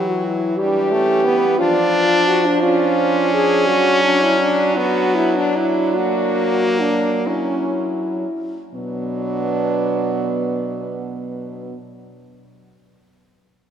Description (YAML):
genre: classical, lyrical piece for horn quartet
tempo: 38-60 BPM (dotted quarters)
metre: 12/8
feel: rubato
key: B minor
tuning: A4 = 440 Hz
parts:
  - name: dark French horn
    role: melody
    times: 0.0-11.8 s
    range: B3 to Ab4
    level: -20 LUFS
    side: left 3 dB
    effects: none
  - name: mellow French horn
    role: second line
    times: 0.0-11.8 s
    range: B3 to E4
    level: -24 LUFS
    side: right 10 dB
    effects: none
  - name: warm French horn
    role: accompaniment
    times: 0.0-11.7 s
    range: F#3 to D4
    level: -21 LUFS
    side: left 1 dB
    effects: none
  - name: mellow French horn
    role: bass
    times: 0.0-11.7 s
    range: B2 to F#3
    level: -24 LUFS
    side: right 2 dB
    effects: none
room: wet church reverb, RT60 3.1 s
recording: none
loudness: -15 LUFS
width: side -8 dB against mid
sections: 0.0-8.7 A section; 8.7-13.7 B section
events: slowing down 0.9-8.7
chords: 0.0 Em; 1.6 F5; 3.7 Bm/F#; 6.0 F#7; 8.7 Bm